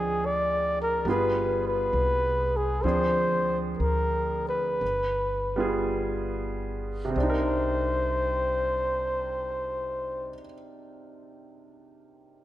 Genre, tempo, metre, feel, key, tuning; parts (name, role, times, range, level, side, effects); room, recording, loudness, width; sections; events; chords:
jazz ballad; 46-72 BPM; 4/4; swing 69% on 8ths; C minor; A4 = 438 Hz
mellow flugelhorn; melody; 0.0-10.4 s; Ab4 to D5; -27 LUFS; left 1 dB
clear baby grand piano; accompaniment; 0.0-12.4 s; C3 to Eb5; -31 LUFS; right 2 dB
upright bass; bass; 0.0-10.3 s; G1 to D2; -32 LUFS; left 1 dB
light reverb; -24 LUFS; side -14 dB against mid
0.0-7.2 A section; 7.2-12.3 B section
slowing down 0.0-7.2
0.0 Dm7b5; 1.1 G7b9; 2.8 Dm7b5; 4.8 G7b9; 7.2 Cm9